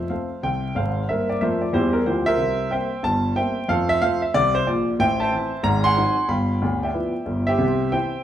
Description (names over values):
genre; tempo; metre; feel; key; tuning
jazz, stride piano; 184 BPM; 4/4; swing 63% on 8ths; F major, C major from 5.0 s; A4 = 439 Hz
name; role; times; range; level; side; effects
warm grand piano; solo; 0.0-8.2 s; D1 to C6; -19 LUFS; equal; none
room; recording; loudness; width
moderate large studio reverb, RT60 1.0 s; band playing live in one room, vinyl crackle; -19 LUFS; side -11 dB against mid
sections
0.0-8.2 A section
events
none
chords
0.0 F; 1.1 C7; 3.7 F; 5.0 Am; 5.6 Ab7; 6.3 G6; 7.6 C